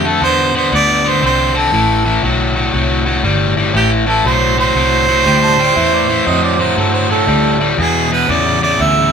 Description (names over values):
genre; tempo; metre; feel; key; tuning
electric blues shuffle; 119 BPM; 4/4; swing 64% on 8ths; A minor; A4 = 440 Hz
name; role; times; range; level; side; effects
clear harmonica; melody; 0.0-9.1 s; G4 to E5; -14 LUFS; right 4 dB; overdrive
cranked stack guitar; riff; 0.0-9.1 s; E2 to C4; -15 LUFS; left 3 dB; overdrive
vintage muted fingered electric bass; bass; 0.0-9.1 s; G1 to G2; -18 LUFS; equal; none
mellow harmonica; second line; 5.3-7.7 s; A4 to A5; -18 LUFS; right 5 dB; none
room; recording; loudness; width
moderate small room reverb, RT60 0.5 s; band playing live in one room; -11 LUFS; side -6 dB against mid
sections
0.0-9.1 A section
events
none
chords
0.0 D7(no3); 1.7 Am7; 7.8 E7